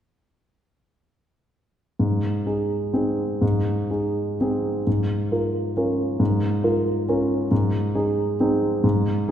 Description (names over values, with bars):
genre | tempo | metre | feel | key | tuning
classical, piano waltz | 117-143 BPM | 3/4 | rubato | Ab major | A4 = 435 Hz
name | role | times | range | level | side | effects
warm concert grand piano | solo | 2.0-9.3 s | Ab2 to Bb4 | -20 LUFS | equal | none
room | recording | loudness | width
wet scoring stage reverb, RT60 1.6 s | heard from further back in the room | -20 LUFS | side -10 dB against mid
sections
2.0-9.3 A section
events
none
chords
2.0 Ab; 4.9 Bbm7/Ab; 7.5 Ab